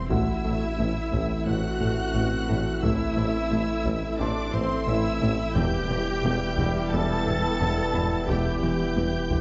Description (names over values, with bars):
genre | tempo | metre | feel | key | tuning
cinematic, hybrid orchestral and electronic film score | 88 BPM | 4/4 | straight | A dorian | A4 = 442 Hz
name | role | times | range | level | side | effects
warm symphonic violin section | melody | 0.0-9.4 s | C6 to A6 | -38 LUFS | equal | none
clear symphonic violin section | second line | 0.0-9.4 s | C5 to A5 | -38 LUFS | equal | none
rich symphonic viola section | accompaniment | 0.0-9.4 s | C4 to A4 | -35 LUFS | equal | none
airy breathy pad | sustained chords | 0.0-9.4 s | E3 to E5 | -39 LUFS | equal | none
saturated sub bass | bass | 0.0-9.4 s | E1 to A1 | -36 LUFS | equal | none
felt-muted upright piano | texture | 0.0-9.4 s | F#4 to C6 | -42 LUFS | equal | none
mellow trombone section | sustained chords | 0.1-9.4 s | E3 to A3 | -37 LUFS | equal | none
warm French horn section | sustained chords | 0.1-9.4 s | B3 to E4 | -36 LUFS | equal | none
thumb-piano-like synth pluck | arpeggios | 0.1-9.4 s | E3 to A4 | -40 LUFS | equal | none
smooth synth bass | riff | 0.1-9.4 s | E2 to A3 | -35 LUFS | equal | none
bright studio double bass section | bass | 0.1-9.4 s | E1 to A1 | -36 LUFS | equal | none
rich symphonic cello section | bass | 0.1-9.4 s | E2 to A2 | -36 LUFS | equal | none
warm tuba | bass | 0.1-9.4 s | E1 to A1 | -37 LUFS | equal | none
taiko ensemble | drums | 0.1-9.4 s | none | -36 LUFS | equal | none
room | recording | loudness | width
moderate scoring stage reverb, RT60 1.6 s | nothing above 7.8 kHz | -26 LUFS | mono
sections
0.0-9.4 A section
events
none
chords
0.1 Am; 5.6 Em